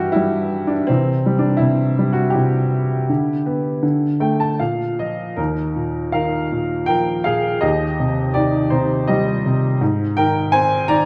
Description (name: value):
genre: classical, lyrical solo piano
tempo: 82 BPM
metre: 3/4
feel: rubato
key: Eb major from 5.4 s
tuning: A4 = 440 Hz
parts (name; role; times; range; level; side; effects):
- clear upright piano; solo; 0.0-11.1 s; Eb2 to Bb5; -19 LUFS; equal; none
room: wet recital hall reverb, RT60 1.6 s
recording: dark, warm production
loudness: -19 LUFS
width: mono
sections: 0.0-5.4 A section; 5.4-11.1 B section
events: upright piano fill 3.8-5.4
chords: 0.0 Em/G; 0.9 C; 3.1 G/D; 3.8 D5; 4.6 Bb5; 5.4 Ebsus2; 7.6 Cm/Eb; 9.8 Ab